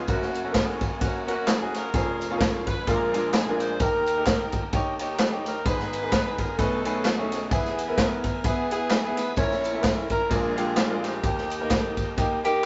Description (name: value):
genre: uptempo gospel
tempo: 129 BPM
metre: 4/4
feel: swing 57% on 8ths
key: unclear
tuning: A4 = 440 Hz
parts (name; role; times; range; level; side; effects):
- clear saxophone section; melody; 0.0-12.6 s; A3 to C#5; -33 LUFS; equal; none
- bright baby grand piano; accompaniment; 0.0-12.7 s; E#1 to C#5; -30 LUFS; equal; none
- bright tonewheel organ; sustained chords; 0.0-12.7 s; E#2 to A#4; -41 LUFS; equal; none
- swinging big-band drum kit; drums; 0.1-12.5 s; kick drum, ride cymbal, snare drum; -29 LUFS; equal; none
- tambourine and handclaps; percussion; 0.1-12.5 s; none; -39 LUFS; equal; none
- mellow soprano saxophone; melody; 12.4-12.7 s; G4; -25 LUFS; equal; none
room: wet booth ambience, RT60 0.3 s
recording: rough rehearsal-room recording, nothing above 7.8 kHz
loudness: -25 LUFS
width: mono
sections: 0.0-12.7 A section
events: none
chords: 0.1 F#; 1.9 C#/E#; 2.9 A#7; 3.8 D#; 5.7 G#m; 6.6 B13; 7.5 E; 9.4 A#dim; 10.3 A#7; 11.2 D#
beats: | 0.08 0.55 1.01 1.48 | 1.94 2.41 2.87 3.33 | 3.80 4.26 4.73 5.19 | 5.66 6.12 6.59 7.05 | 7.52 7.98 8.45 8.91 | 9.38 9.84 10.31 10.77 | 11.24 11.71 12.17 12.64